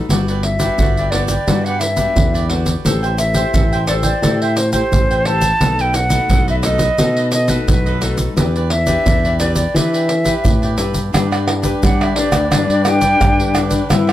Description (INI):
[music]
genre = samba and choro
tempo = 87 BPM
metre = 4/4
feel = straight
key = unclear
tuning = A4 = 441 Hz
[part]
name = cavaquinho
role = accompaniment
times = 0.0-14.1 s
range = D4 to G5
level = -26 LUFS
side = right 5 dB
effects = none
[part]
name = nylon-string guitar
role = accompaniment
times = 0.0-14.1 s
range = B2 to C5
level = -24 LUFS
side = left 5 dB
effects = none
[part]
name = fingered electric bass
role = bass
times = 0.1-14.1 s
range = G1 to G3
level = -19 LUFS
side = equal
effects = none
[part]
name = egg shaker, surdo, pandeiro and tamborim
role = percussion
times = 0.1-14.1 s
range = none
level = -18 LUFS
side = right 1 dB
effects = none
[part]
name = hollow concert flute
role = melody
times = 0.4-13.6 s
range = B4 to A5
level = -19 LUFS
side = equal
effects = none
[part]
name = breathy tenor saxophone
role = second line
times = 11.1-14.1 s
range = D4 to E4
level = -20 LUFS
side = left 4 dB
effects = none
[sound]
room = light reverb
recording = none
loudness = -13 LUFS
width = side -13 dB against mid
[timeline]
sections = 0.0-11.1 A section; 11.1-14.1 B section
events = none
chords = 0.1 Gmaj7; 2.9 Am7; 5.6 B7; 8.4 Em7; 11.1 G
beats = | 0.10 0.79 1.48 2.17 | 2.86 3.55 4.24 4.92 | 5.62 6.30 7.00 7.69 | 8.38 9.07 9.76 10.45 | 11.14 11.83 12.52 13.21 | 13.91